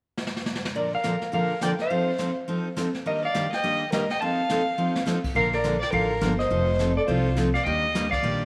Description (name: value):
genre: country, western swing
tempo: 208 BPM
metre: 4/4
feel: swing 61% on 8ths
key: Bb major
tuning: A4 = 440 Hz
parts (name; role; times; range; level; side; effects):
- jazz brush drum kit; drums; 0.2-8.4 s; brushed snare drum, crash cymbal, hi-hat, kick drum, snare drum; -37 LUFS; equal; none
- clean lap steel guitar; melody; 0.8-8.4 s; C5 to A5; -30 LUFS; equal; none
- dark fiddle; second line; 0.8-8.4 s; F4 to F5; -30 LUFS; equal; none
- picked steel-string acoustic guitar; accompaniment; 0.8-8.4 s; Bb2 to A4; -30 LUFS; equal; none
- upright bass; bass; 5.4-8.4 s; F1 to Eb2; -30 LUFS; equal; none
room: moderate echo chamber reverb, RT60 1.9 s, small room ambience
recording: none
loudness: -25 LUFS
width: mono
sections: 0.8-5.4 A section; 5.4-8.4 B section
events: drum fill 0.2-0.8, 4.8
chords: 0.0 N.C.; 0.8 Bbmaj7; 1.9 F7; 3.1 Ebmaj7; 4.2 F7; 5.4 Bbmaj7; 6.5 F7; 7.7 Ebmaj7